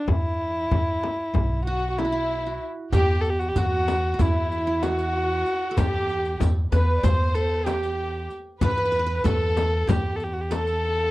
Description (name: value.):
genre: Turkish makam ensemble.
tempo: 190 BPM (eighths).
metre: 9/8.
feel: straight.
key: E makam nihavent.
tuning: A4 = 440 Hz.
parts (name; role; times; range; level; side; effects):
warm kamancheh; melody; 0.0-11.1 s; E4 to C5; -26 LUFS; equal; none.
upright bass; bass; 0.1-11.1 s; B1 to E2; -25 LUFS; equal; none.
darbuka; percussion; 0.1-10.8 s; none; -29 LUFS; equal; none.
frame drum; percussion; 0.1-10.7 s; none; -29 LUFS; left 4 dB; none.
dark symphonic violin section; second line; 1.7-11.1 s; E4 to D5; -34 LUFS; left 2 dB; none.
qanun; second line; 1.7-11.1 s; E4 to C5; -33 LUFS; right 4 dB; none.
riq; percussion; 2.9-10.8 s; none; -37 LUFS; right 6 dB; none.
room: little or no reverb.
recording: dry, close 1970s-style studio recording.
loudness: -21 LUFS.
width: side -18 dB against mid.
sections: 0.0-2.9 A section; 2.9-11.1 B section.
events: none.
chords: none.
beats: | 0.08 0.39 0.71 1.03 1.34 1.66 1.98 2.29 2.61 | 2.93 3.24 3.56 3.88 4.19 4.51 4.83 5.14 5.46 | 5.77 6.09 6.41 6.72 7.04 7.36 7.67 7.99 8.30 | 8.62 8.94 9.25 9.57 9.89 10.20 10.52 10.84.